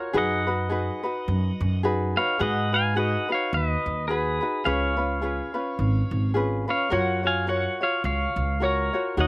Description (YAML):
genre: Hawaiian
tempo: 106 BPM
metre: 4/4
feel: swing 58% on 8ths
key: F# major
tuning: A4 = 440 Hz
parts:
  - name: pedal steel guitar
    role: melody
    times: 0.0-9.3 s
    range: G#4 to G#5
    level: -26 LUFS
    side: equal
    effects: none
  - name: ukulele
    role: accompaniment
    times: 0.0-9.3 s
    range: C#4 to C#5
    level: -27 LUFS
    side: left 1 dB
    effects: none
  - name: upright bass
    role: bass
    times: 0.1-9.3 s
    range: G#1 to G#2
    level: -26 LUFS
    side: right 1 dB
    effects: none
room: little or no reverb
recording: recorded outdoors, with no room sound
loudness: -22 LUFS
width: side -23 dB against mid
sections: 0.0-9.3 A section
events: none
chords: 0.2 B6/F#; 2.4 G#m7; 4.7 C#7; 6.9 F#maj7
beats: | 0.15 0.72 1.28 1.84 | 2.41 2.97 3.54 4.10 | 4.66 5.23 5.79 6.36 | 6.92 7.48 8.04 8.61 | 9.17